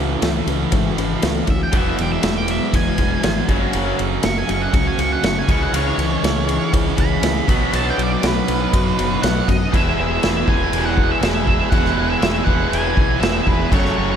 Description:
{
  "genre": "classic rock",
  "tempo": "120 BPM",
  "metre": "4/4",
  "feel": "straight",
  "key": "E major",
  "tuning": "A4 = 440 Hz",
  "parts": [
    { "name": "picked steel-string acoustic guitar", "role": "accompaniment", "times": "0.0-14.2 s", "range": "E2 to A4", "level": "-28 LUFS", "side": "right 4 dB", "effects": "none" },
    { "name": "overdriven electric guitar", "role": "riff", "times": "0.0-14.2 s", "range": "F#2 to A4", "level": "-24 LUFS", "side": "left 11 dB", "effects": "none" },
    { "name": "tight distorted guitar", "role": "riff", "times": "0.0-14.2 s", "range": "E2 to C#4", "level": "-24 LUFS", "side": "right 11 dB", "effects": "distortion, slapback echo" },
    { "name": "growling fingered electric bass", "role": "bass", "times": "0.0-14.2 s", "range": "E1 to G#2", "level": "-24 LUFS", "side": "equal", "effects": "overdrive" },
    { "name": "vintage drum kit", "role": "drums", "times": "0.2-13.9 s", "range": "crash cymbal, kick drum, ride cymbal, snare drum", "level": "-20 LUFS", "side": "equal", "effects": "none" },
    { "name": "octave-fuzz lead guitar", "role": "melody", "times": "1.5-14.2 s", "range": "B4 to C#6", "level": "-24 LUFS", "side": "right 3 dB", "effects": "distortion, slapback echo" }
  ],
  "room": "moderate lush hall reverb, RT60 2.4 s",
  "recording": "big arena sound",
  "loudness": "-16 LUFS",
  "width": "side -8 dB against mid",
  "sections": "0.0-9.7 A section; 9.7-14.2 B section",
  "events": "lead electric guitar solo 0.0-9.7",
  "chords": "0.0 A6/C#; 1.7 Eadd9; 3.5 F#; 5.5 C#m; 7.5 B; 9.7 E"
}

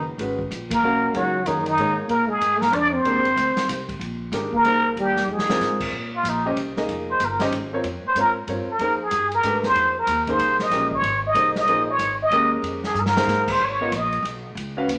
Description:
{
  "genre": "modal jazz",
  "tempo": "188 BPM",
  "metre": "3/4",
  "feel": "swing 62% on 8ths",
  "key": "Bb dorian from 5.9 s",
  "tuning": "A4 = 439 Hz",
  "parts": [
    { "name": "trumpet with plunger mute", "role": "melody", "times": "0.0-14.3 s", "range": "D#4 to Eb5", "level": "-23 LUFS", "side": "equal", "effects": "none" },
    { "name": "dark trombone", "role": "second line", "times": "0.0-5.8 s", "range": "D#3 to D4", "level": "-28 LUFS", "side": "equal", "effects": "none" },
    { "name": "upright bass", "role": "bass", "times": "0.0-15.0 s", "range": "F1 to A#2", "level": "-34 LUFS", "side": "equal", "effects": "none" },
    { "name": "clear concert grand piano", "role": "accompaniment", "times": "0.2-14.9 s", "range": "G#3 to E#5", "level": "-30 LUFS", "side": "equal", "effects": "none" },
    { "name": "open jazz drum kit", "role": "drums", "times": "0.2-15.0 s", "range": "crash cymbal, hi-hat, kick drum, ride cymbal, snare drum", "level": "-34 LUFS", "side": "equal", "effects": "none" }
  ],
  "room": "moderate large studio reverb, RT60 1.1 s",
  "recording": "none",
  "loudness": "-22 LUFS",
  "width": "mono",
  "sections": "0.0-5.9 A section; 5.9-13.6 B section; 13.6-15.0 B section",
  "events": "band accent 0.7; drum fill 5.3-5.6, 13.0-13.3; muted trumpet solo 5.9-15.0",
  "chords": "0.0 G#9sus4; 2.1 A#9sus4; 5.9 Bbm11; 13.6 G#sus4"
}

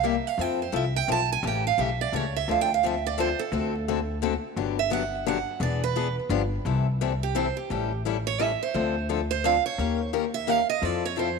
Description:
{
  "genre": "acoustic string swing (jazz manouche)",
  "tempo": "172 BPM",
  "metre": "3/4",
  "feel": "swing 60% on 8ths",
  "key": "C major from 6.7 s",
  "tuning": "A4 = 440 Hz",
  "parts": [
    { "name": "picked steel-string acoustic guitar", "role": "melody", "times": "0.0-11.4 s", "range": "G4 to A5", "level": "-27 LUFS", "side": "right 10 dB", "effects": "tape echo" },
    { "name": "picked steel-string acoustic guitar", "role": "accompaniment", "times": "0.0-11.3 s", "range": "C3 to Bb4", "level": "-28 LUFS", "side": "left 13 dB", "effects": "none" },
    { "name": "upright bass", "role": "bass", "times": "0.0-11.4 s", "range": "E1 to F2", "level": "-30 LUFS", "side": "left 1 dB", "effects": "none" }
  ],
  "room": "moderate echo chamber reverb, RT60 2.0 s",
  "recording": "1960s-style stereo with parts hard left and right",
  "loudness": "-24 LUFS",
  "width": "side -4 dB against mid",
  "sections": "0.0-6.7 A section; 6.7-11.4 A section",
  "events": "steel-string acoustic guitar solo 0.0-6.7, 6.7-11.4",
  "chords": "0.4 Fmaj7; 1.4 A7; 2.5 Dm7; 3.5 D7; 4.6 Gmaj7; 5.6 E7; 6.3 G7; 6.7 C6; 7.7 A7; 8.7 Dm7; 9.8 Eb7; 10.8 Fmaj7"
}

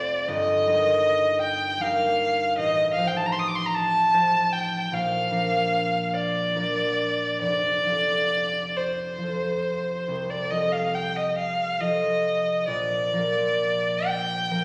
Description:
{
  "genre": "classical, romantic duo for violin and harp",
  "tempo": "42-53 BPM (dotted quarters)",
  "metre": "12/8",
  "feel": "rubato",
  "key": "unclear",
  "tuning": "A4 = 440 Hz",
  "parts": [
    { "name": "rich violin", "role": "melody", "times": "0.0-14.6 s", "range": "C5 to Eb6", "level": "-25 LUFS", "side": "equal", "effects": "none" },
    { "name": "concert harp", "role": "accompaniment", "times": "0.0-14.6 s", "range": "F1 to C5", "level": "-32 LUFS", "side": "equal", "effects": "none" }
  ],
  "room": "wet recital hall reverb, RT60 1.5 s",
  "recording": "vinyl crackle",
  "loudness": "-24 LUFS",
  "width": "mono",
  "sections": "0.0-14.6 A section",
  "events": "none",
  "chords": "0.3 Eb/G; 2.6 F7/A; 4.9 Bb; 7.4 F; 12.7 Bb"
}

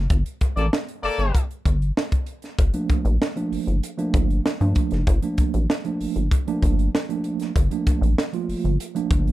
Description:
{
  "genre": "funk",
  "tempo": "97 BPM",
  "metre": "4/4",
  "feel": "straight",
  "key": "unclear",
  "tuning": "A4 = 441 Hz",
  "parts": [
    { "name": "rubbery square bass", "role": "bass", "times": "0.0-9.3 s", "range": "F#1 to G2", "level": "-21 LUFS", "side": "equal", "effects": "none" },
    { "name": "crisp fusion drum kit", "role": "drums", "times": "0.1-9.3 s", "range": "hi-hat, kick drum, snare drum", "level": "-22 LUFS", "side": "equal", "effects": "none" },
    { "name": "warm horn section", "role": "second line", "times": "0.6-1.4 s", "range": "Bb3 to D5", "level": "-24 LUFS", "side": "left 3 dB", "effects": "tube saturation" },
    { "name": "mellow tine electric piano", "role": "stabs", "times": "2.7-9.3 s", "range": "F3 to F4", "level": "-26 LUFS", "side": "right 5 dB", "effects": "medium stereo tremolo, tape echo" }
  ],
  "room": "little or no reverb",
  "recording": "none",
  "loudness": "-20 LUFS",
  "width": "side -16 dB against mid",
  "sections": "0.0-9.3 A section",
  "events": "band accent 0.1-2.6",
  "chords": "0.0 Gm9"
}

